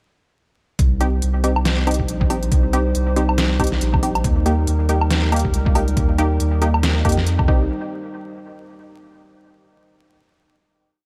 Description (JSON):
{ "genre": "deep dubstep", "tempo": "139 BPM", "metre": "4/4", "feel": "swing 58% on 16ths, half-time", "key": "C minor", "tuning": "A4 = 436 Hz", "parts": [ { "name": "dark analog pad", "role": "sustained chords", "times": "0.8-7.7 s", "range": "G3 to C5", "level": "-30 LUFS", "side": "equal", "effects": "subtle chorus" }, { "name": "soft dub sub bass", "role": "bass", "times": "0.8-7.7 s", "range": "Bb1 to F2", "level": "-22 LUFS", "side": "equal", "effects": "none" }, { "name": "dubstep drum kit", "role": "drums", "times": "0.8-7.5 s", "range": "hi-hat, snare drum, woodblock", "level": "-26 LUFS", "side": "equal", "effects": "none" }, { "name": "electronic kick drum", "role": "drums", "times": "0.8-7.6 s", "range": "none", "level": "-22 LUFS", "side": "equal", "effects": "none" }, { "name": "filtered dub chord stab", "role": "stabs", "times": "1.0-7.6 s", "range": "Bb3 to G4", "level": "-27 LUFS", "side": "equal", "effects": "chorus, dub echo" } ], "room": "little or no reverb", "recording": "vinyl crackle", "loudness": "-19 LUFS", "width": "mono", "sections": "0.8-7.7 drop; 7.7-9.4 final hit", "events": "drop 0.8-7.7", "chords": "0.8 Cm; 4.2 Eb; 7.5 Cm; 7.7 N.C." }